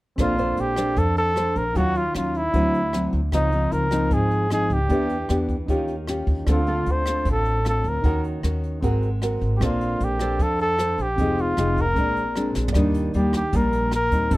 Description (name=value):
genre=bossa nova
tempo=153 BPM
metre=4/4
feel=straight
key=Bb major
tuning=A4 = 440 Hz
part: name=warm flugelhorn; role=melody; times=0.2-14.4 s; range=Eb4 to C5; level=-24 LUFS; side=equal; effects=none
part: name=nylon-string guitar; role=accompaniment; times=0.2-14.4 s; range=Ab2 to C5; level=-25 LUFS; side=equal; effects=none
part: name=warm baby grand piano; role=accompaniment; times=0.2-14.4 s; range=C4 to Gb5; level=-33 LUFS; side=right 1 dB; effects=none
part: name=upright bass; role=bass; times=0.2-14.4 s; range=F1 to F2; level=-25 LUFS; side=equal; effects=none
part: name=jazz brush drum kit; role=drums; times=0.2-14.4 s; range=hi-hat, kick drum, rim click, snare drum, toms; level=-28 LUFS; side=equal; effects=none
room=little or no reverb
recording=close, detailed microphones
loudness=-20 LUFS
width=side -18 dB against mid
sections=0.2-12.7 A section; 12.7-14.4 B section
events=drum fill 12.6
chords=0.2 Bbmaj9; 1.8 Ebm9; 2.5 D9; 3.3 Dbmaj9; 4.9 Em7; 5.7 Eb9; 6.5 Dm7; 8.0 Ebm7; 8.8 Ab9; 9.6 Bbmaj9; 11.2 Fm7; 12.0 Bb9; 12.7 Ebmaj7